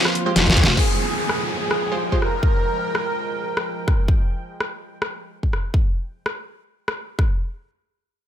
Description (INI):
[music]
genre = heavy wobble dubstep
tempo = 145 BPM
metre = 4/4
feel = half-time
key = F minor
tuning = A4 = 440 Hz
[part]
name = soft supersaw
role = melody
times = 0.0-4.0 s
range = F3 to Bb4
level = -26 LUFS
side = right 1 dB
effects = digital delay
[part]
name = evolving wavetable pad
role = sustained chords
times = 0.0-4.1 s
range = F3 to G5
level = -31 LUFS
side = right 1 dB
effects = phaser, built-in reverb, sidechain pumping
[part]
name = dubstep drum kit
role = drums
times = 0.1-7.3 s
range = crash cymbal, hi-hat, rim click, snare drum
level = -22 LUFS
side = equal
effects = none
[part]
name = orchestra-hit-like synth stab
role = stabs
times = 0.3-2.2 s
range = Ab3 to C5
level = -27 LUFS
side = right 2 dB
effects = built-in reverb, digital delay
[part]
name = metallic wobble bass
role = bass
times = 0.4-0.7 s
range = F1 to F2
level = -20 LUFS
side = equal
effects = distortion, chorus, overdrive
[part]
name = electronic kick drum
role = drums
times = 0.5-7.3 s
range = none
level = -19 LUFS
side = equal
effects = none
[part]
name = pulsing pluck wobble bass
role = bass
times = 0.7-0.8 s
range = F1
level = -23 LUFS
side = equal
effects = chorus, overdrive
[part]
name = downlifter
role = sound effects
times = 0.8-4.1 s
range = none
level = -29 LUFS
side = equal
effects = none
[sound]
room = light reverb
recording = none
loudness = -19 LUFS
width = side -10 dB against mid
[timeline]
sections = 0.8-7.4 A section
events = drum fill 0.4-0.8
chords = 0.0 Fmadd9